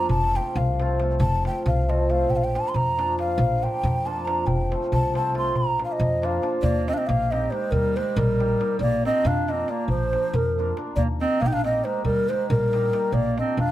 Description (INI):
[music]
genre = balkan folk, Balkan wedding band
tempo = 277 BPM (eighths)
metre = 5/8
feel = straight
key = Bb major, Eb major from 6.6 s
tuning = A4 = 439 Hz
[part]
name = breathy mellow ney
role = melody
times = 0.0-13.7 s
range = Bb4 to C6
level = -25 LUFS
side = equal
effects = plate reverb
[part]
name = cimbalom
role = accompaniment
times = 0.0-13.5 s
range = F3 to Bb4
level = -29 LUFS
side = equal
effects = none
[part]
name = upright bass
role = bass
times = 0.0-13.7 s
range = F1 to F2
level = -27 LUFS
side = equal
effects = none
[part]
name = darbuka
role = percussion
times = 0.1-13.7 s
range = none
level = -28 LUFS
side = equal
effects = none
[part]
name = warm clarinet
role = second line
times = 6.6-13.7 s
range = F3 to Eb4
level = -28 LUFS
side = right 4 dB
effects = none
[sound]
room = moderate small room reverb, RT60 0.5 s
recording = none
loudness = -21 LUFS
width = side -14 dB against mid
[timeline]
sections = 0.0-6.6 A section; 6.6-13.7 B section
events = ney solo 0.0-6.6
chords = 0.1 F; 2.3 Bb; 4.5 F; 5.5 Bb; 6.6 Eb; 8.8 Bb; 11.0 Eb; 13.1 Bb